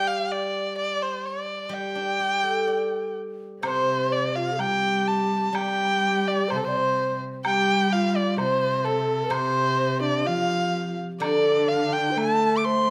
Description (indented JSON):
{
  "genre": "chinese traditional, Chinese chamber ensemble",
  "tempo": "63 BPM",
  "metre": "2/4",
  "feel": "straight",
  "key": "G shang mode",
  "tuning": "A4 = 440 Hz",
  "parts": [
    { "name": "warm erhu", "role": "melody", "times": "0.0-12.9 s", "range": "A4 to D6", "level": "-27 LUFS", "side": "equal", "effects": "none" },
    { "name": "steel-string zither", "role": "accompaniment", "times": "0.0-12.9 s", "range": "C3 to D5", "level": "-32 LUFS", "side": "equal", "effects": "none" },
    { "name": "breathy bright low xiao", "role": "second line", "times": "3.6-12.9 s", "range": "D4 to D5", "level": "-30 LUFS", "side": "equal", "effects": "none" },
    { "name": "warm cello", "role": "second line", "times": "3.6-12.9 s", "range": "C3 to A3", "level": "-31 LUFS", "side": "equal", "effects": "none" },
    { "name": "woodblock", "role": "percussion", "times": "3.6-12.4 s", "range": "none", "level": "-36 LUFS", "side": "equal", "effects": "none" }
  ],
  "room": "moderate recital hall reverb, RT60 1.6 s",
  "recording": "none",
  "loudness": "-24 LUFS",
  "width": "mono",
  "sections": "0.0-3.6 A section; 3.6-12.9 B section",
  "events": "none",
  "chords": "none"
}